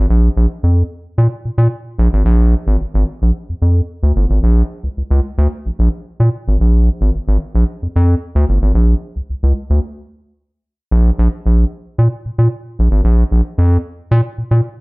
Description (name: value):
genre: funk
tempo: 111 BPM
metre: 4/4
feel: straight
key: unclear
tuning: A4 = 440 Hz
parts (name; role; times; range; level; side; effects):
- round analog bass; solo; 0.0-14.6 s; G1 to Bb2; -12 LUFS; equal; none
room: moderate large studio reverb, RT60 0.9 s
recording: dark, warm production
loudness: -13 LUFS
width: side -28 dB against mid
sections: 0.0-2.3 A section; 2.3-10.9 B section; 10.9-14.8 A section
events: break 9.8-10.9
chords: none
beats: | 0.10 0.64 1.18 1.72 | 2.26 2.80 3.34 3.89 | 4.43 4.97 5.51 6.06 | 6.60 7.14 7.68 8.22 | 8.76 9.30 9.84 10.38 | 10.91 11.45 11.99 12.52 | 13.05 13.59 14.12